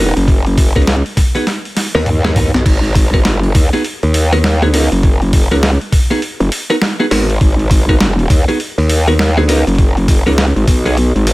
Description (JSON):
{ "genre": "glitch hop", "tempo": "101 BPM", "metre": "4/4", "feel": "swing 62% on 16ths", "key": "G# minor", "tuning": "A4 = 440 Hz", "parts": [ { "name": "clean electric guitar", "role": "stabs", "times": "0.0-10.9 s", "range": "B3 to A#4", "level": "-18 LUFS", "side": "right 1 dB", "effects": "sidechain pumping, dub echo" }, { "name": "growl bass", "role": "bass", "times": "0.0-11.3 s", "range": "F#1 to D#2", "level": "-13 LUFS", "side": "equal", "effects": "chorus, tube saturation" }, { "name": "boom bap sampler-style drum kit", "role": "drums", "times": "0.2-11.3 s", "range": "crash cymbal, hi-hat, snare drum, toms", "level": "-19 LUFS", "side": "equal", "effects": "studio reverb" }, { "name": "electronic kick drum", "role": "drums", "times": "0.3-10.8 s", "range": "none", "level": "-12 LUFS", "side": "equal", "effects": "studio reverb" } ], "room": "little or no reverb", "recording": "none", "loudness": "-10 LUFS", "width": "side -20 dB against mid", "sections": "0.0-11.3 A section", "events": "drum fill 1.8-2.7", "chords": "0.0 G#m7" }